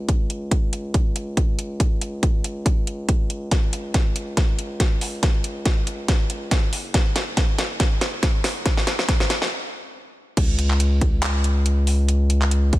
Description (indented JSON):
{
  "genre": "future bass",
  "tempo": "140 BPM",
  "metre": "4/4",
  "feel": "swing 55% on 16ths, half-time",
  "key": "unclear",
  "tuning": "A4 = 442 Hz",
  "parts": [
    { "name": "saturated sub bass", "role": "bass", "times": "0.0-12.8 s", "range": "Gb1 to Db2", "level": "-24 LUFS", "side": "equal", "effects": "sidechain pumping, high-pass filter" },
    { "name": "electronic kick drum", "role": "drums", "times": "0.1-12.8 s", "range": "none", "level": "-20 LUFS", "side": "equal", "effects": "none" },
    { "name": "pop drum kit", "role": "drums", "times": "0.1-12.8 s", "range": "crash cymbal, handclaps, hi-hat, snare drum", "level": "-25 LUFS", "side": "equal", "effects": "high-pass filter on toms, high-pass filter on hats, high-pass filter on snare, high-pass filter on cymbals" }
  ],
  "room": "little or no reverb",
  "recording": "none",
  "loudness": "-19 LUFS",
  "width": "side -17 dB against mid",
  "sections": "0.0-10.4 A section; 10.4-12.8 B section",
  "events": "build-up 0.0-10.4; drum fill 3.5-9.5; stop 9.5-10.4; drop 10.4-12.8",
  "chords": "none"
}